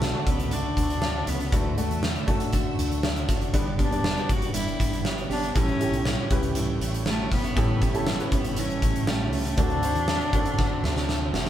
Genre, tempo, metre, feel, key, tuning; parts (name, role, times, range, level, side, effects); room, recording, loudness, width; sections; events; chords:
piano-driven pop; 119 BPM; 4/4; straight; D major; A4 = 440 Hz
warm concert grand piano; accompaniment; 0.0-11.5 s; G2 to D5; -33 LUFS; left 1 dB
warm studio string section; sustained chords; 0.0-11.5 s; A4 to E6; -41 LUFS; right 1 dB
picked steel-string acoustic guitar; riff; 0.0-11.5 s; G2 to G4; -32 LUFS; right 3 dB
woody fretless electric bass; bass; 0.0-11.5 s; E1 to F#2; -31 LUFS; equal
huge arena drum kit; drums; 0.0-11.5 s; hi-hat, kick drum, snare drum; -26 LUFS; equal
rich cello; melody; 0.3-11.5 s; A3 to F#4; -30 LUFS; left 1 dB
moderate small room reverb, RT60 0.5 s; band playing live in one room; -22 LUFS; side -11 dB against mid
0.0-11.5 A section
drum fill 10.6-11.5
0.0 D; 3.5 G; 5.6 A7; 9.6 D7